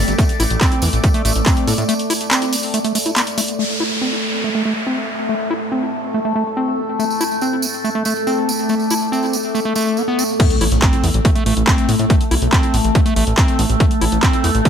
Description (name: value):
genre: psychedelic trance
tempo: 141 BPM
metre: 4/4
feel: straight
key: A minor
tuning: A4 = 440 Hz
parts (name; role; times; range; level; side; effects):
- overtone-sweeping drone; sustained chords; 0.0-14.7 s; A3 to D5; -24 LUFS; left 1 dB; chorus, built-in reverb, phaser, sidechain pumping
- fat analog bass; bass; 0.0-1.8, 10.6-14.6 s; G1 to A2; -17 LUFS; equal; none
- deep dark ambient pad; texture; 0.0-14.7 s; A3 to E6; -24 LUFS; equal; chorus, built-in reverb, sidechain pumping
- techno drum kit; drums; 0.1-3.6, 10.4-14.7 s; crash cymbal, handclaps, hi-hat; -21 LUFS; equal; overdrive, low-pass filter on hats, low-pass filter on snare, low-pass filter on cymbals
- tambourine; percussion; 0.1-3.6, 7.0-10.4 s; none; -25 LUFS; right 4 dB; none
- overdriven acid bass; riff; 0.2-14.7 s; A3 to E4; -21 LUFS; moving between left 5 dB and right 4 dB; auto-pan, cassette tape, sidechain pumping, ping-pong delay
- electronic kick drum; drums; 0.2-1.5, 10.4-14.7 s; none; -15 LUFS; equal; overdrive
- downlifter and impact; sound effects; 3.6-7.0, 10.5-12.1 s; none; -25 LUFS; equal; none
room: light reverb, digital ambience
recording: none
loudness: -15 LUFS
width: side -8 dB against mid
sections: 0.0-3.6 A section; 3.6-10.4 B section; 10.4-14.7 C section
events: break 1.9-3.6; filter sweep on acid bass 3.6-10.4; drop 10.4-14.7; impact 10.4-12.1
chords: 0.0 A5